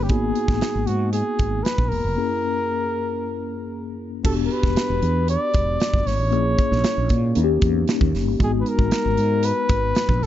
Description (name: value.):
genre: polished 1980s jazz-funk pop.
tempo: 116 BPM.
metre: 4/4.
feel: straight.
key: unclear.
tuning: A4 = 440 Hz.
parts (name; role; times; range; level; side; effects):
warm flugelhorn; melody; 0.0-10.3 s; F#4 to D5; -25 LUFS; equal; none.
mellow tine electric piano; accompaniment; 0.0-10.3 s; F#2 to G#4; -25 LUFS; left 4 dB; medium stereo tremolo, analog chorus.
mellow fretless electric bass; bass; 0.0-10.3 s; E1 to A#2; -23 LUFS; equal; none.
modern studio drum kit; drums; 0.1-10.3 s; crash cymbal, hi-hat, kick drum, snare drum; -23 LUFS; right 1 dB; none.
room: studio ambience.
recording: dark, warm production, nothing above 7.6 kHz.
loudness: -19 LUFS.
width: side -12 dB against mid.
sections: 0.0-4.3 A section; 4.3-10.3 B section.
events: break 2.2-4.3.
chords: 0.1 G#m7; 2.2 F#7; 4.3 Em7; 6.3 A#m7b5; 7.4 D#7; 8.4 G#m7.